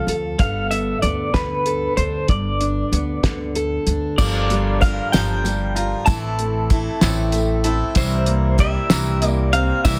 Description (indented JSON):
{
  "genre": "indie folk with a building arrangement",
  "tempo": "63 BPM (dotted quarters)",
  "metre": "6/8",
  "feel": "straight",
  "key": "unclear",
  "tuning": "A4 = 440 Hz",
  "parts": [
    { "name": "electric guitar through a small old amp", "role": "melody", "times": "0.0-10.0 s", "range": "B4 to A5", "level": "-26 LUFS", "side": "equal", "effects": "tremolo" },
    { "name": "fingerpicked steel-string acoustic guitar", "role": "accompaniment", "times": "0.0-6.1 s", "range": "F2 to A4", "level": "-28 LUFS", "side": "equal", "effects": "none" },
    { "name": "upright bass", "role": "bass", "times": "0.1-10.0 s", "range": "G1 to D2", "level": "-24 LUFS", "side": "equal", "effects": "none" },
    { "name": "cloth-damped thuddy drum kit", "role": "drums", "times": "0.1-10.0 s", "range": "crash cymbal, hi-hat, kick drum, snare drum", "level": "-22 LUFS", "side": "equal", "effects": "none" },
    { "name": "picked swing-style acoustic guitar", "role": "accompaniment", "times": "4.2-10.0 s", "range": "A2 to Bb4", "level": "-28 LUFS", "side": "equal", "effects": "none" },
    { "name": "warm upright piano", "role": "arpeggios", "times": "4.2-10.0 s", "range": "E3 to G4", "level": "-28 LUFS", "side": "equal", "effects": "none" },
    { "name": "tambourine", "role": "percussion", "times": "4.2-10.0 s", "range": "none", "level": "-34 LUFS", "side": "equal", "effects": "none" }
  ],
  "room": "light reverb, studio reverb",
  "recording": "dense, heavily limited modern master",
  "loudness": "-20 LUFS",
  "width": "mono",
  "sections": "0.0-4.2 A section; 4.2-10.0 B section",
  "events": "none",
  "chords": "0.4 Gadd9; 4.2 Gm7; 6.1 Am; 8.0 C7"
}